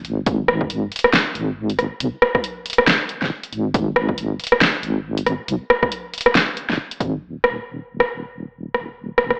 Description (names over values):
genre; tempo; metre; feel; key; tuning
deep dubstep; 138 BPM; 4/4; swing 58% on 16ths, half-time; Eb minor; A4 = 445 Hz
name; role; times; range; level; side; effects
deep soft wobble bass; bass; 0.0-9.4 s; Eb1 to Cb2; -26 LUFS; equal; chorus
deep house drum kit; drums; 0.0-9.4 s; hi-hat, rim click, snare drum; -20 LUFS; equal; overdrive, studio ambience
electronic kick drum; drums; 0.3-7.1 s; none; -26 LUFS; equal; overdrive, studio ambience
room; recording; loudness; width
moderate digital room reverb, RT60 1.1 s; AM radio sound; -20 LUFS; mono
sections
0.0-7.2 A section; 7.2-9.4 B section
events
none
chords
none